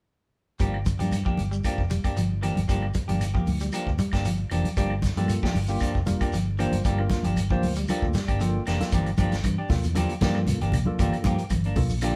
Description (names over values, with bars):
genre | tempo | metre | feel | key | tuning
afrobeat | 116 BPM | 4/4 | straight | G dorian | A4 = 441 Hz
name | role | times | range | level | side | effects
electric guitar at the edge of break-up | arpeggios | 0.6-12.2 s | D3 to G3 | -34 LUFS | equal | spring reverb
clean electric guitar | stabs | 0.6-12.2 s | F3 to G4 | -34 LUFS | equal | none
fingered electric bass | bass | 0.6-12.1 s | F1 to G2 | -30 LUFS | equal | none
vintage drum kit | drums | 0.6-12.1 s | hi-hat, kick drum, snare drum | -32 LUFS | equal | none
shekere | percussion | 0.6-12.2 s | none | -38 LUFS | equal | none
claves | percussion | 0.7-12.2 s | none | -46 LUFS | equal | none
congas | percussion | 0.9-11.9 s | none | -32 LUFS | equal | none
barky tine electric piano | accompaniment | 5.2-12.2 s | Bb3 to G5 | -34 LUFS | equal | overdrive, medium tremolo
room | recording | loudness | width
moderate studio reverb, RT60 0.9 s | band playing live in one room | -25 LUFS | mono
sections
0.6-8.9 A section; 8.9-12.2 B section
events
tine electric piano fill 7.9-8.9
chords
0.6 Gm7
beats
| 0.61 1.13 1.65 2.17 | 2.69 3.21 3.73 4.25 | 4.77 5.29 5.81 6.33 | 6.85 7.37 7.89 8.41 | 8.92 9.44 9.96 10.48 | 10.99 11.51 12.03